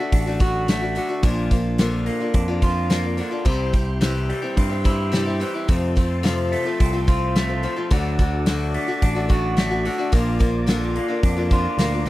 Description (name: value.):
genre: folk rock and heartland rock.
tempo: 108 BPM.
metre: 4/4.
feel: straight.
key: unclear.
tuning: A4 = 439 Hz.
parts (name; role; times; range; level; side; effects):
picked old ladder-braced acoustic guitar; accompaniment; 0.0-12.1 s; F2 to G4; -26 LUFS; left 4 dB; none.
electric guitar through a small old amp; riff; 0.0-12.1 s; F2 to F#4; -27 LUFS; right 2 dB; none.
picked electric bass; bass; 0.1-12.1 s; A1 to G2; -24 LUFS; equal; none.
natural country drum kit; drums; 0.1-12.1 s; hi-hat, kick drum, snare drum; -19 LUFS; equal; none.
tonewheel organ; sustained chords; 3.4-12.1 s; E4 to D6; -35 LUFS; right 1 dB; slow rotary speaker, chorus vibrato.
room: little or no reverb.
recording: dry, close 1970s-style studio recording.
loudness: -18 LUFS.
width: side -16 dB against mid.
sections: 0.0-12.1 A section.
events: none.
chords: 0.0 D; 1.2 Bb; 3.5 C; 5.7 F; 7.9 D; 10.1 Bb.